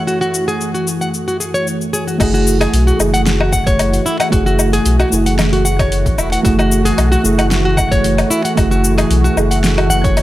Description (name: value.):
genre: organic downtempo.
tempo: 113 BPM.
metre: 4/4.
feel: swing 53% on 16ths.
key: F# minor.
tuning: A4 = 441 Hz.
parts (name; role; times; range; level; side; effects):
muted felt-like synth keys; accompaniment; 0.0-10.2 s; F#2 to G#4; -20 LUFS; right 2 dB; chorus, sidechain pumping, tape echo.
warm analog pad; sustained chords; 0.0-10.2 s; E3 to F#4; -21 LUFS; equal; chorus, sidechain pumping.
nylon-string guitar; arpeggios; 0.0-10.2 s; E4 to F#5; -18 LUFS; equal; tape echo.
deep house drum kit; drums; 0.1-10.2 s; cabasa, crash cymbal, hi-hat, snare drum, woodblock; -20 LUFS; left 2 dB; overdrive.
warm sub bass; bass; 2.2-10.2 s; E1 to B1; -16 LUFS; equal; sidechain pumping.
electronic kick drum; drums; 2.2-10.1 s; none; -18 LUFS; equal; overdrive.
room: light reverb, digital ambience.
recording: none.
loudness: -12 LUFS.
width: side -15 dB against mid.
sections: 0.0-2.2 A section; 2.2-10.2 B section.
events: none.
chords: 0.0 F#m7.